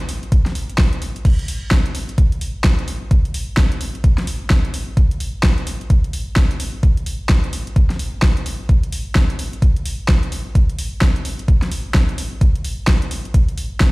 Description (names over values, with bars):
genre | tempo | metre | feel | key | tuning
house | 129 BPM | 4/4 | swing 61% on 16ths | none | none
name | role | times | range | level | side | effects
big-room dance drum kit | drums | 0.0-13.9 s | crash cymbal, hi-hat, snare drum | -23 LUFS | equal | overdrive, studio reverb
electronic kick drum | drums | 0.3-13.9 s | none | -14 LUFS | equal | studio reverb
room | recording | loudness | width
little or no reverb | played on a big sound system in a bare room, large studio reverb | -16 LUFS | side -23 dB against mid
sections
0.0-13.9 A section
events
none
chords
none